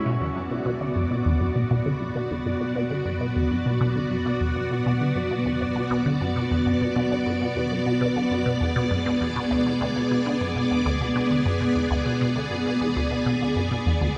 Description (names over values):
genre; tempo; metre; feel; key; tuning
ambient, sequencer-driven space music; 100 BPM; 4/4; straight; B dorian; A4 = 440 Hz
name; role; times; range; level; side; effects
string machine, full ensemble; sustained chords; 0.0-14.2 s; B3 to D5; -27 LUFS; equal; ensemble chorus, shimmer reverb
Celtic harp; arpeggios; 0.0-2.7 s; C#4 to E5; -40 LUFS; equal; tape echo, shimmer reverb
resonant blip pluck; riff; 0.1-14.1 s; D2 to D3; -28 LUFS; equal; phaser, tape echo
room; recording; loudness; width
wet huge ambient reverb, RT60 7.1 s; none; -24 LUFS; mono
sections
0.1-14.2 A section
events
filter sweep on synth arpeggio sound 0.1-14.2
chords
0.1 Bm